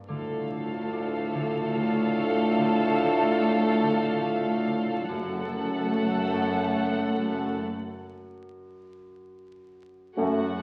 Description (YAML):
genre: cinematic, suspense film score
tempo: 72 BPM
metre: 3/4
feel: straight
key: unclear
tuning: A4 = 442 Hz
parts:
  - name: concert harp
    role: riff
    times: 0.0-10.6 s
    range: F#2 to D4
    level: -41 LUFS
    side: equal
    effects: none
  - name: warm chamber violin section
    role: melody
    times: 0.1-10.6 s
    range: F5 to F#5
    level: -37 LUFS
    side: equal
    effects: none
  - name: warm chamber violin section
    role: second line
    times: 0.1-10.6 s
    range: F#4 to A4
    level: -35 LUFS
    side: equal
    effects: none
  - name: dark chamber viola section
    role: accompaniment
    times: 0.1-10.6 s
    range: A3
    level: -32 LUFS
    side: equal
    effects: none
  - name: mellow French horn section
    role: sustained chords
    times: 0.1-10.5 s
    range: C#4 to F#4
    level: -34 LUFS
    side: equal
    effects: none
  - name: warm trombone section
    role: sustained chords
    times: 0.1-10.5 s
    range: F#2 to A3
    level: -32 LUFS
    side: equal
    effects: none
  - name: dark chamber cello section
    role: bass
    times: 0.1-10.6 s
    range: D2 to F#2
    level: -41 LUFS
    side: equal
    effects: none
  - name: warm chamber double bass section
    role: bass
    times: 0.1-10.6 s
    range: F#1 to D2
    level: -42 LUFS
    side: equal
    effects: none
room: wet scoring stage reverb, RT60 1.6 s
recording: very old 78 rpm record, vinyl crackle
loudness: -26 LUFS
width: mono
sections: 0.0-10.2 A section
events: break 7.6-10.2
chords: 0.1 Dm; 5.1 F#m